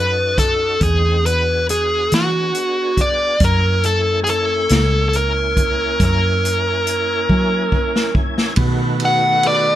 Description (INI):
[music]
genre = slow blues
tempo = 46 BPM (dotted quarters)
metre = 12/8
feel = straight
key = unclear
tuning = A4 = 440 Hz
[part]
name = dark smooth lead guitar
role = melody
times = 0.0-9.8 s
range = F#4 to F#5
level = -17 LUFS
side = equal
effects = overdrive
[part]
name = tonewheel organ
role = sustained chords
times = 0.0-9.8 s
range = D#3 to G#5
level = -26 LUFS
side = equal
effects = slow rotary speaker, chorus vibrato
[part]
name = vintage muted fingered electric bass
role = bass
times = 0.0-9.8 s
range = C#2 to F#3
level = -20 LUFS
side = equal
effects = none
[part]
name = vintage drum kit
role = drums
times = 0.4-9.6 s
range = hi-hat, kick drum, ride cymbal, snare drum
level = -20 LUFS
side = equal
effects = none
[part]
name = mellow saxophone section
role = sustained chords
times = 8.6-9.8 s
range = F#4 to B4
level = -26 LUFS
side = right 3 dB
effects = none
[sound]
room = light reverb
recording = none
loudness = -14 LUFS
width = side -12 dB against mid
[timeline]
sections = 0.0-8.6 A section; 8.6-9.8 B section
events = drum fill 7.3-8.6; lead electric guitar solo 8.6-9.8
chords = 0.0 B7; 0.8 E7; 3.4 F#7; 8.6 B7